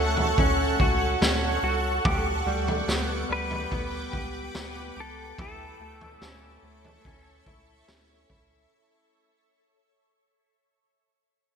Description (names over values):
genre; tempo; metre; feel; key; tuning
dream pop; 72 BPM; 4/4; straight; unclear; A4 = 439 Hz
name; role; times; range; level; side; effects
shimmering ambient pad; sustained chords; 0.0-8.7 s; A4 to D6; -29 LUFS; right 2 dB; chorus, built-in reverb, phaser
semi-hollow electric guitar; arpeggios; 0.0-9.3 s; G3 to G4; -31 LUFS; left 2 dB; lush chorus, digital delay
round analog bass; bass; 0.0-8.7 s; C#2 to D2; -32 LUFS; equal; none
raw garage drum kit; drums; 0.2-8.5 s; kick drum, snare drum, toms; -28 LUFS; equal; gated reverb
clean lap steel guitar; melody; 3.3-7.9 s; A4 to B4; -37 LUFS; left 2 dB; analog chorus, digital delay
room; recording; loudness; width
wet lush hall reverb, RT60 2.5 s; bright 1980s-style digital production; -23 LUFS; side -7 dB against mid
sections
0.0-8.7 A section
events
fade-out 0.0-8.7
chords
0.0 Dmaj7; 2.0 G/D; 5.4 A/D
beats
0.38 1.21 | 2.05 2.88 3.71 4.55 | 5.38 6.21 7.05 7.88